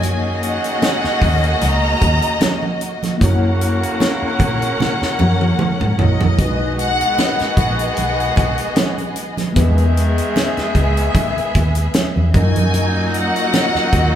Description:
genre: lush 1970s-style soul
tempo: 76 BPM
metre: 4/4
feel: swing 54% on 16ths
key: B major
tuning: A4 = 440 Hz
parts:
  - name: warm symphonic violin section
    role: melody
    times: 0.0-14.1 s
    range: D#5 to A#5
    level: -22 LUFS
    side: left 2 dB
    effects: none
  - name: warm symphonic string section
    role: second line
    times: 0.0-14.2 s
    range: A#3 to F#5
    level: -22 LUFS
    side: left 1 dB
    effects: none
  - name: mellow tine electric piano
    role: accompaniment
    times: 0.0-14.2 s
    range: E3 to E5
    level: -25 LUFS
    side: left 2 dB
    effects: medium stereo tremolo
  - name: warm horn section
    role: stabs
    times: 0.0-14.2 s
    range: A#2 to G#4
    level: -26 LUFS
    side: right 1 dB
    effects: none
  - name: vintage muted fingered electric bass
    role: bass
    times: 0.0-14.2 s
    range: A#1 to A#2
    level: -19 LUFS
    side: equal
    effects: none
  - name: tight funk drum kit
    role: drums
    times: 0.0-14.1 s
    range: hi-hat, kick drum, snare drum, toms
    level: -19 LUFS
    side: equal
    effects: none
  - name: congas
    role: percussion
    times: 0.0-14.1 s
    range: none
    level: -26 LUFS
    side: right 4 dB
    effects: none
room: wet large studio reverb, RT60 1.4 s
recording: band playing live in one room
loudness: -14 LUFS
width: side -10 dB against mid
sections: 0.0-14.2 A section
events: drum fill 4.8-6.4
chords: 0.0 D#m7; 3.2 F#7; 6.4 B6; 9.6 Emaj7; 12.3 D#m7

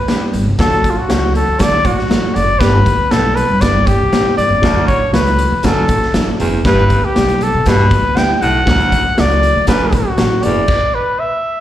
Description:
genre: uptempo 1960s-style soul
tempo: 119 BPM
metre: 4/4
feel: straight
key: D major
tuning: A4 = 440 Hz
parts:
  - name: breathy trumpet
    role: melody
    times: 0.0-11.6 s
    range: F4 to G5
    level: -15 LUFS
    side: left 1 dB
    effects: slapback echo
  - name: upright bass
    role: bass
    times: 0.0-10.6 s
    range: F#1 to D3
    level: -17 LUFS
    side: equal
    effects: none
  - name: warm upright piano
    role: accompaniment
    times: 0.1-10.5 s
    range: F#3 to A4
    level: -20 LUFS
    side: left 3 dB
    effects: slapback echo
  - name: raw garage drum kit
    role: drums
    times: 0.1-10.8 s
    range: crash cymbal, hi-hat, kick drum, snare drum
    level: -17 LUFS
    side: equal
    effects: none
  - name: raspy baritone saxophone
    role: riff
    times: 4.6-10.6 s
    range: D2 to B2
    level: -20 LUFS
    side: right 3 dB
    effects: slapback echo
room: moderate club reverb, RT60 0.5 s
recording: live gig heard through the venue's PA, club reverb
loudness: -11 LUFS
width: side -12 dB against mid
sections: 0.0-11.6 A section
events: stop 10.7-11.6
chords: 0.0 G; 0.6 D; 2.6 G; 4.6 D; 6.7 G; 8.7 D; 10.7 N.C.

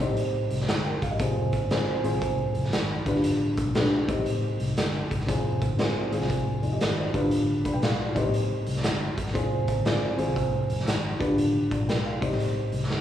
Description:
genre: uptempo 1960s-style soul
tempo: 118 BPM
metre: 4/4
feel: swing 65% on 8ths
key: F dorian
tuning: A4 = 441 Hz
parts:
  - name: dark upright piano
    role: accompaniment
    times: 0.0-13.0 s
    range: C4 to B5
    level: -28 LUFS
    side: equal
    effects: slapback echo
  - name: vintage muted fingered electric bass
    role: bass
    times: 0.0-13.0 s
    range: F1 to C2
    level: -29 LUFS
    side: equal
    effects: none
  - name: raw garage drum kit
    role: drums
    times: 0.0-13.0 s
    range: hi-hat, kick drum, snare drum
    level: -28 LUFS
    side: equal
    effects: none
room: light reverb, studio reverb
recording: live gig heard through the venue's PA, club reverb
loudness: -24 LUFS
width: side -11 dB against mid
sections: 0.0-13.0 A section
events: none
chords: 0.0 Cm; 1.2 Fm; 3.0 G7; 4.0 Cm; 5.3 Fm; 7.1 G7; 8.1 Cm; 9.3 Fm; 11.1 G7; 12.1 Cm

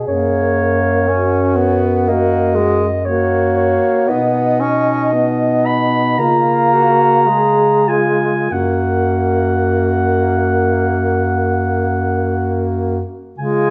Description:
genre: classical, lyrical piece for single-reed quartet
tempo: 46-61 BPM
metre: 4/4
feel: rubato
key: F# major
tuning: A4 = 440 Hz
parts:
  - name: clear alto saxophone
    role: second line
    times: 0.0-13.7 s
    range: D#4 to G#4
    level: -22 LUFS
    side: equal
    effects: none
  - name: warm bass clarinet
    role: bass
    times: 0.0-13.7 s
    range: F#2 to Db3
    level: -22 LUFS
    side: equal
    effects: none
  - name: warm clarinet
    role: melody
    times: 0.1-13.7 s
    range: C#5 to B5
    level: -20 LUFS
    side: equal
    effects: none
  - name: warm tenor saxophone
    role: accompaniment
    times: 0.1-13.7 s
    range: Ab3 to C#4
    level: -21 LUFS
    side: equal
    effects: none
room: moderate recital hall reverb, RT60 1.4 s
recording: none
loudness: -15 LUFS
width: mono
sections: 0.0-13.4 A section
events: none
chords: 0.1 F#; 4.1 B; 6.2 C#6; 8.5 F#

